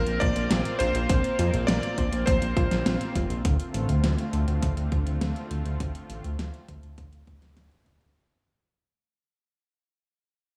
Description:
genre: synthwave.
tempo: 102 BPM.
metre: 4/4.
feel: straight.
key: D minor.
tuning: A4 = 440 Hz.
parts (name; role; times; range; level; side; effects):
bright electric grand piano; melody; 0.0-3.1 s; Bb4 to D5; -32 LUFS; equal; digital delay.
lush unison pad; sustained chords; 0.0-8.1 s; D3 to F4; -36 LUFS; equal; chorus.
unison pluck; arpeggios; 0.0-3.3 s; C4 to C5; -38 LUFS; equal; none.
fat analog bass; bass; 0.0-8.1 s; F1 to F2; -29 LUFS; equal; none.
pop drum kit; drums; 0.1-8.1 s; hi-hat, snare drum; -32 LUFS; equal; overdrive, gated reverb.
electronic kick drum; drums; 0.2-8.0 s; none; -30 LUFS; equal; overdrive.
room: light reverb.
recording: small room ambience.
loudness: -26 LUFS.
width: mono.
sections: 0.0-3.4 A section; 3.4-8.2 B section.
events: fade-out 3.4-8.2; filter sweep on analog synth bass 3.4-8.2.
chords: 0.0 Bbsus2; 3.4 Dm7.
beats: 0.51 | 1.10 1.68 2.27 2.86 | 3.45 4.04 4.63 5.21 | 5.80 6.39 6.98 7.57.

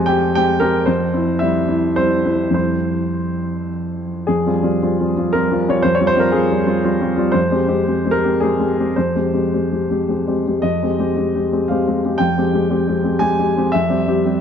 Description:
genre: neoclassical minimalist piano.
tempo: 100-122 BPM.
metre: 3/4.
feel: rubato.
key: F minor.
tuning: A4 = 440 Hz.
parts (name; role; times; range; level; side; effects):
warm grand piano; solo; 0.0-14.4 s; F2 to Ab5; -15 LUFS; equal; none.
room: moderate stone room reverb, RT60 1.3 s.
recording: dark, warm production.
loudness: -15 LUFS.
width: side -8 dB against mid.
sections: 0.0-4.3 A section; 4.3-14.4 B section.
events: none.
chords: 0.0 Fmadd9; 0.9 C/F; 4.3 Fmadd9; 13.7 C/F.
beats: 0.37 | 0.89 1.41 1.96 | 2.53 3.12 3.69 | 4.27 4.81 5.33 | 5.85 6.34 6.84 | 7.35 7.87 8.40 | 8.95 9.52 10.08 | 10.63 11.16 11.68 | 12.21 12.73 13.24 | 13.74 14.26.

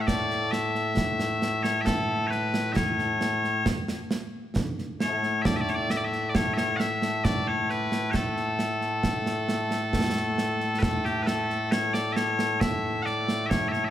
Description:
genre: scottish traditional, Scottish pipe music.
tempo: 67 BPM.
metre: 3/4.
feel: straight.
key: A major.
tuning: A4 = 438 Hz.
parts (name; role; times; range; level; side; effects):
loud bright bagpipes; melody; 0.0-13.9 s; A2 to F#5; -26 LUFS; left 1 dB; none.
concert snare drum and concert bass drum; drums; 0.1-13.8 s; none; -29 LUFS; right 2 dB; none.
room: moderate concert hall reverb, RT60 2.1 s.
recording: none.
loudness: -24 LUFS.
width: side -12 dB against mid.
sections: 0.0-10.8 A section; 10.8-13.9 B section.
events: none.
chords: none.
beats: | 0.08 0.97 1.87 | 2.77 3.66 4.56 | 5.45 6.35 7.24 | 8.14 9.03 9.93 | 10.82 11.72 12.62 | 13.51.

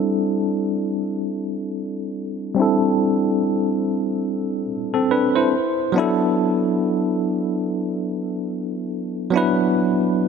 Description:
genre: R&B.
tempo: free time.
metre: none.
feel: none.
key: E minor.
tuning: A4 = 439 Hz.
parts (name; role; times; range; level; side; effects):
bell-like tine electric piano; solo; 0.0-10.3 s; F#3 to C5; -19 LUFS; equal; medium stereo tremolo.
room: moderate lush hall reverb, RT60 2.7 s.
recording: low-pass filter.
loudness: -19 LUFS.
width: side -6 dB against mid.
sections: 0.0-6.0 A section; 6.0-10.3 B section.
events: filter sweep 0.0-6.0.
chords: 0.0 D9sus4; 5.5 N.C.; 6.0 E9sus4.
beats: free time.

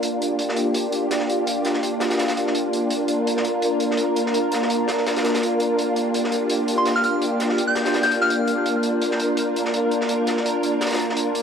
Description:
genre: drum and bass, jungle.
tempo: 167 BPM.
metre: 4/4.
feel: swing 54% on 16ths.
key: G minor.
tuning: A4 = 440 Hz.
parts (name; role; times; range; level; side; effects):
soft string machine; sustained chords; 0.0-11.4 s; Bb3 to Bb4; -20 LUFS; equal; ensemble chorus.
crunchy breakbeat drum kit; drums; 0.0-11.4 s; hi-hat, snare drum; -28 LUFS; equal; high-pass filter on hats, high-pass filter on snare, high-pass filter on room.
soft synth bell; melody; 6.8-8.7 s; C6 to G6; -24 LUFS; equal; chorus, phaser, vintage 12-bit sampler grit, dub echo.
room: moderate plate reverb, RT60 1.3 s, small room ambience.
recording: dry, gritty hardware recording.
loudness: -19 LUFS.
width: side -7 dB against mid.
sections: 0.0-11.4 A section.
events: filter sweep on string machine 0.0-11.4.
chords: 0.0 Gm7.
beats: | 0.03 0.39 0.75 1.11 | 1.47 1.83 2.19 2.54 | 2.90 3.26 3.62 3.98 | 4.34 4.70 5.06 5.42 | 5.78 6.14 6.50 6.86 | 7.22 7.58 7.93 8.29 | 8.65 9.01 9.37 9.73 | 10.09 10.45 10.81 11.17.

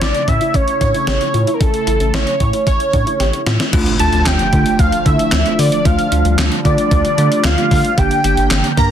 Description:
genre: synth-pop.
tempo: 113 BPM.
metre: 4/4.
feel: straight.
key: D minor.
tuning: A4 = 439 Hz.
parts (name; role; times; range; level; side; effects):
wide unison lead; melody; 0.0-8.9 s; A4 to Bb5; -17 LUFS; right 1 dB; ping-pong delay.
phased analog pad; sustained chords; 0.0-8.9 s; C#3 to G4; -24 LUFS; equal; phaser, chorus.
soft round pluck; arpeggios; 0.0-3.7 s; C#4 to G4; -27 LUFS; left 4 dB; chorus, ping-pong delay.
round analog bass; bass; 0.0-8.9 s; G1 to D3; -17 LUFS; equal; none.
gated 80s digital drum machine; drums; 0.0-8.9 s; crash cymbal, handclaps, hi-hat, kick drum, snare drum; -17 LUFS; equal; gated reverb, gated reverb snare, overdrive.
bell-like tine electric piano; accompaniment; 3.7-8.9 s; A3 to Bb4; -19 LUFS; right 1 dB; medium stereo tremolo.
impact; sound effects; 3.7-5.9 s; none; -24 LUFS; equal; none.
room: moderate studio reverb, RT60 0.5 s.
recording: dense, heavily limited modern master.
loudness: -12 LUFS.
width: side -9 dB against mid.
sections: 0.0-3.7 A section; 3.7-8.9 B section.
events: drum fill 3.2-3.7; impact 3.7-5.9.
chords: 0.0 A; 3.7 Dm; 8.0 Gm.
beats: 0.01 0.55 1.08 | 1.61 2.14 2.67 3.20 | 3.73 4.26 4.79 5.32 | 5.86 6.39 6.92 7.45 | 7.98 8.51.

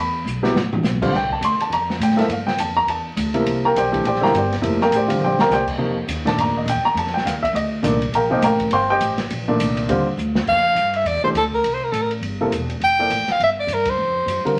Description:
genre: modal jazz.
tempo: 206 BPM.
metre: 4/4.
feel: swing 59% on 8ths.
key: unclear.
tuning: A4 = 440 Hz.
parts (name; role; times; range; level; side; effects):
dark baby grand piano; accompaniment; 0.0-14.6 s; Bb2 to C6; -21 LUFS; equal; none.
upright bass; bass; 0.0-14.6 s; E1 to Bb2; -28 LUFS; equal; none.
open jazz drum kit; drums; 0.3-14.5 s; crash cymbal, hi-hat, kick drum, ride cymbal, snare drum, toms; -30 LUFS; equal; none.
breathy soprano saxophone; melody; 10.5-14.5 s; A4 to G5; -20 LUFS; equal; none.
room: wet studio reverb, RT60 0.7 s.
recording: vinyl crackle.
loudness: -20 LUFS.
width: mono.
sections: 0.0-1.1 A section; 1.1-10.5 A section; 10.5-14.6 B section.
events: drum fill 0.3-0.8, 5.2, 10.2; band accent 13.8.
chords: 0.0 A7sus2; 1.1 C9sus4; 5.8 F9sus4; 10.5 C9sus4.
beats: 0.26 0.55 0.84 | 1.13 1.42 1.71 2.01 | 2.30 2.59 2.88 3.17 | 3.46 3.76 4.05 4.34 | 4.63 4.92 5.21 5.51 | 5.80 6.09 6.38 6.67 | 6.96 7.26 7.55 7.84 | 8.13 8.42 8.71 9.01 | 9.30 9.59 9.88 10.17 | 10.47 10.76 11.05 11.34 | 11.63 11.93 12.22 12.51 | 12.80 13.10 13.39 13.68 | 13.97 14.27 14.56.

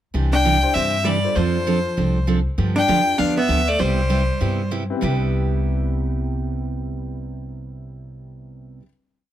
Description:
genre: country, western swing.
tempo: 196 BPM.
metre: 4/4.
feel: swing 62% on 8ths.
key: C major.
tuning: A4 = 441 Hz.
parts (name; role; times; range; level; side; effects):
picked steel-string acoustic guitar; accompaniment; 0.1-8.8 s; C3 to A4; -25 LUFS; right 5 dB; none.
upright bass; bass; 0.1-8.8 s; C2 to G2; -23 LUFS; left 1 dB; none.
rich fiddle; melody; 0.3-4.7 s; C5 to G5; -22 LUFS; left 2 dB; none.
archtop guitar, miked and amplified; second line; 0.3-4.7 s; F3 to D4; -24 LUFS; equal; none.
warm upright piano; accompaniment; 0.6-8.9 s; C3 to C5; -31 LUFS; left 6 dB; none.
room: light reverb.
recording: none.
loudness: -18 LUFS.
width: side -12 dB against mid.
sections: 0.1-5.0 A section; 5.0-7.5 final chord.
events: none.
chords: 0.1 Cadd9; 1.4 F6; 2.6 G7; 3.8 Cmaj7.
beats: | 0.14 0.45 0.75 1.05 | 1.36 1.66 1.97 2.27 | 2.58 2.88 3.19 3.49 | 3.80 4.10 4.41 4.71 | 5.02 5.33 5.63 5.94 | 6.25 6.55 6.86 7.16.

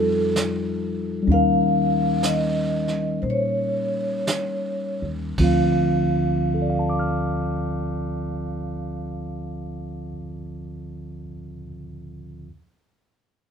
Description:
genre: jazz ballad.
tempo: 52-67 BPM.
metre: 4/4.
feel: swing 68% on 8ths.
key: D minor.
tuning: A4 = 441 Hz.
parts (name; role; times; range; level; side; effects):
vibraphone with soft mallets; melody; 0.0-10.1 s; A4 to F5; -26 LUFS; right 1 dB; none.
mellow tine electric piano; accompaniment; 0.0-12.5 s; D2 to F6; -24 LUFS; left 1 dB; none.
upright bass; bass; 0.0-10.1 s; D2 to Bb2; -28 LUFS; right 1 dB; none.
vintage brush drum kit; drums; 0.4-6.3 s; brushed snare drum, hi-hat, kick drum, ride cymbal, snare drum; -30 LUFS; right 3 dB; none.
room: moderate club reverb, RT60 0.5 s.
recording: minimal, uncompressed stereo recording.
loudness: -21 LUFS.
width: side -7 dB against mid.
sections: 0.0-1.3 A section; 1.3-5.4 B section; 5.4-10.0 C section.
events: slowing down 0.0-5.4.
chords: 0.0 F9; 1.3 Eb7; 5.4 Dm7.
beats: 0.35 | 1.27 2.23 3.22 4.27 | 5.38 6.53 7.68 8.83.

